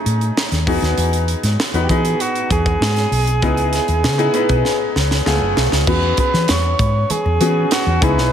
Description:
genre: polished 1980s jazz-funk pop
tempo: 98 BPM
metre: 4/4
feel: straight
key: unclear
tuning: A4 = 445 Hz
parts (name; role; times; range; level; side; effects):
- dark cor anglais; melody; 0.0-8.3 s; F#4 to C#5; -21 LUFS; right 1 dB; analog delay
- clear grand piano; accompaniment; 0.0-8.3 s; A3 to B4; -20 LUFS; left 2 dB; wide subtle chorus
- hollow-body short-scale fingered electric bass; bass; 0.1-8.3 s; F#1 to E3; -18 LUFS; equal; none
- tight funk drum kit; drums; 0.1-8.3 s; crash cymbal, hi-hat, kick drum, snare drum; -20 LUFS; right 1 dB; none
- congas; percussion; 5.9-8.2 s; none; -32 LUFS; right 3 dB; none
room: moderate lush hall reverb, RT60 2.7 s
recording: dreamy mix soaked in reverb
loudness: -14 LUFS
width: side -9 dB against mid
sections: 0.0-5.9 A section; 5.9-8.3 B section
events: drum fill 4.7-5.9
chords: 0.0 B13 (rootless); 0.7 Emaj7; 3.4 C#m9; 5.3 C#7b13; 5.9 E69

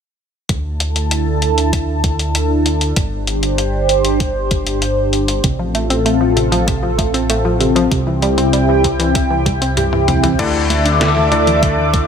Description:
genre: synthwave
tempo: 97 BPM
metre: 4/4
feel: straight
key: D minor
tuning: A4 = 444 Hz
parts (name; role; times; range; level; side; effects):
- phased analog pad; sustained chords; 0.9-12.1 s; C3 to D6; -17 LUFS; equal; phaser, chorus, sidechain pumping
- dark detuned saw bass; bass; 0.5-12.1 s; G1 to D2; -19 LUFS; equal; sidechain pumping
- detuned 8-bit digital drum machine; drums; 0.5-12.1 s; crash cymbal, hi-hat, snare drum, toms; -21 LUFS; left 2 dB; small room ambience
- electronic kick drum; drums; 0.5-12.1 s; none; -19 LUFS; equal; overdrive, small room ambience
- analog pluck; arpeggios; 5.4-12.0 s; C3 to D4; -20 LUFS; right 1 dB; chorus, ping-pong delay
- warm electric grand piano; stabs; 10.4-12.1 s; D3 to D5; -18 LUFS; left 3 dB; ping-pong delay
room: light reverb, digital ambience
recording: none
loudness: -13 LUFS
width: side -7 dB against mid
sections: 0.5-10.4 A section; 10.4-12.1 B section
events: filter sweep on detuned saw bass 0.5-10.4; filter sweep on analog synth pad 0.5-10.4; drum fill 9.8-10.4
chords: 0.5 Dsus2; 3.0 Gsus4; 5.4 F/A; 7.9 C; 10.4 Dsus2

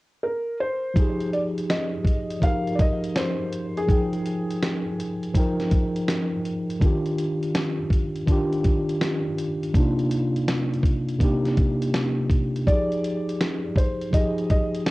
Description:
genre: lo-fi hip hop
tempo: 82 BPM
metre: 4/4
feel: swing 66% on 16ths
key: F dorian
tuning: A4 = 440 Hz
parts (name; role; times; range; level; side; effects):
- felt-muted upright piano; melody; 0.2-6.4, 12.7-14.9 s; Ab4 to F5; -28 LUFS; equal; cassette tape, tape echo
- mellow tine electric piano; accompaniment; 0.9-14.9 s; C3 to G5; -25 LUFS; equal; medium stereo tremolo, cassette tape
- dusty soul sampler-style drum kit; drums; 1.0-14.9 s; hi-hat, kick drum, snare drum; -23 LUFS; equal; cassette tape
room: light reverb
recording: home recording on cassette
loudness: -21 LUFS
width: side -20 dB against mid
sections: 1.0-14.9 A section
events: none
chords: 0.0 N.C.; 1.0 Fm9; 6.8 Ebmaj9; 9.7 Cm11; 12.7 Fm9

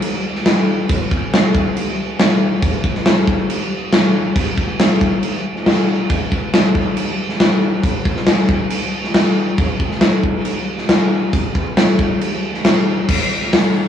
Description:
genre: rock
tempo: 138 BPM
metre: 4/4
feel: straight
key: none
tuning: none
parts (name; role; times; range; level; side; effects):
- big rock drum kit; drums; 0.0-13.6 s; crash cymbal, hi-hat, kick drum, snare drum; -14 LUFS; equal; none
room: moderate studio ambience, RT60 0.5 s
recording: rough rehearsal-room recording, cassette tape, small room ambience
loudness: -14 LUFS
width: side -9 dB against mid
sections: 0.0-13.1 A section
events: none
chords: none

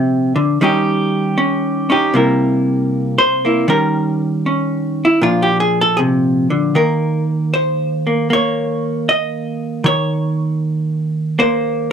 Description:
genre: solo jazz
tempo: 78 BPM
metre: 4/4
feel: swing 68% on 8ths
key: Eb mixolydian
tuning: A4 = 440 Hz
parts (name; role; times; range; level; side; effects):
- vintage hollow-body jazz guitar; solo; 0.0-11.9 s; Bb2 to Eb5; -14 LUFS; equal; none
room: light reverb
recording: close, detailed microphones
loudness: -14 LUFS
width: side -7 dB against mid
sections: 0.0-6.8 A section; 6.8-11.9 B section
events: hollow-body jazz guitar solo 0.0-6.8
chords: 0.0 Bb7; 0.6 Eb7; 2.1 C7; 3.7 Eb7; 5.2 Bb7; 6.8 Eb5

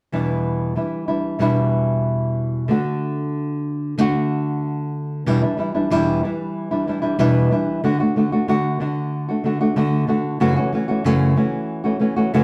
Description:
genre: pop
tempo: 94 BPM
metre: 4/4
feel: straight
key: unclear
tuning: A4 = 440 Hz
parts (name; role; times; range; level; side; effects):
- nylon-string guitar; accompaniment; 0.1-12.4 s; E2 to F#4; -20 LUFS; equal; none
room: wet studio reverb, RT60 0.8 s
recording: band playing live in one room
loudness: -21 LUFS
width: mono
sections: 0.1-5.3 A section; 5.3-12.4 B section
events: none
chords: 0.1 Em7; 2.7 D; 5.3 Em7; 7.8 D; 10.4 F#m7

